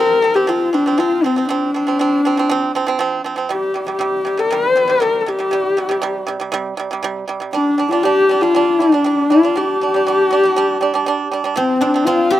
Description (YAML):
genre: mongolian traditional, Mongolian folk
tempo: 119 BPM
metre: 4/4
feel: straight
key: unclear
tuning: A4 = 435 Hz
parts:
  - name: dark horsehead fiddle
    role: melody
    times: 0.0-12.4 s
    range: C4 to C5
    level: -15 LUFS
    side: left 2 dB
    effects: slapback echo
  - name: pipa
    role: arpeggios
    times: 0.0-12.4 s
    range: C3 to D4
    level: -20 LUFS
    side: right 6 dB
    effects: slapback echo
  - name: guzheng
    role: second line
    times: 11.6-12.4 s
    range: C4 to G4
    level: -18 LUFS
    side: left 3 dB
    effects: none
room: little or no reverb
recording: recorded outdoors, with no room sound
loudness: -14 LUFS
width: side -13 dB against mid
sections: 0.0-11.6 A section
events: none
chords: 0.0 F5; 3.5 C5; 7.5 G5; 11.6 F5